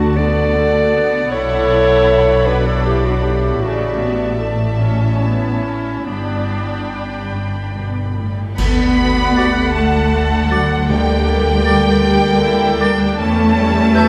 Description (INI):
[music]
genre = cinematic, emotional film score for orchestra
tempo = 47-53 BPM (dotted quarters)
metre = 6/8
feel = rubato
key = D major from 8.6 s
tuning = A4 = 444 Hz
[part]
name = warm studio violin section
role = melody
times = 0.0-14.1 s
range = F#5 to B5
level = -26 LUFS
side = equal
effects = none
[part]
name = dark studio violin section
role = second line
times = 0.0-14.1 s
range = E4 to G5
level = -29 LUFS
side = equal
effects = none
[part]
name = warm clarinet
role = second line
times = 0.0-14.1 s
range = B3 to D5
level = -23 LUFS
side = equal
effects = none
[part]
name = rich studio viola section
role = accompaniment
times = 0.0-14.1 s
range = C#3 to F#5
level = -25 LUFS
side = equal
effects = none
[part]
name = mellow French horn section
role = sustained chords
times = 0.0-14.1 s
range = G3 to D5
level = -25 LUFS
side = equal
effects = none
[part]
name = dark studio double bass section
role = bass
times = 0.0-14.1 s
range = G1 to E2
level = -22 LUFS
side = equal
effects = none
[part]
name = warm studio cello section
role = bass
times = 0.0-14.1 s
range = G2 to B3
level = -23 LUFS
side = equal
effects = none
[part]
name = cymbal swell, clash cymbals and concert bass drum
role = percussion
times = 6.1-10.1 s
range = none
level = -26 LUFS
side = equal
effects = none
[part]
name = silver concert flute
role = second line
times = 9.4-14.1 s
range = G6 to A6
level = -28 LUFS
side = equal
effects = none
[part]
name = warm oboe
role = second line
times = 9.4-14.1 s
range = D5 to E5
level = -31 LUFS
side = equal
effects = none
[part]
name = timpani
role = percussion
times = 10.9-12.0 s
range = D3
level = -31 LUFS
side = equal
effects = none
[sound]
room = wet cathedral reverb, RT60 5.8 s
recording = in a vast, echoing space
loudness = -16 LUFS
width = mono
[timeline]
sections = 0.0-8.6 A section; 8.6-14.1 B section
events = band accent 8.6-9.4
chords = 0.0 D; 1.3 Bm; 3.6 A; 6.1 G; 8.6 D; 10.9 Gmadd9/D; 13.2 Em